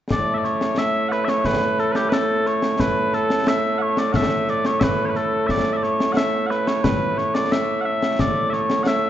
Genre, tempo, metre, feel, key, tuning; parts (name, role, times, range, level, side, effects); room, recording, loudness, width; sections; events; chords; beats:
scottish traditional, Scottish pipe music; 89 BPM; 2/4; straight; A major; A4 = 441 Hz
mellow small bagpipes; melody; 0.1-9.1 s; A2 to F#5; -19 LUFS; equal
concert snare drum and concert bass drum; drums; 0.1-9.0 s; -24 LUFS; left 1 dB
moderate concert hall reverb, RT60 2.0 s; recorded in a church or concert hall, nothing above 7.7 kHz; -18 LUFS; side -11 dB against mid
0.1-9.1 A section
| 0.10 0.77 | 1.45 2.12 | 2.80 3.47 | 4.14 4.82 | 5.49 6.17 | 6.84 7.51 | 8.19 8.86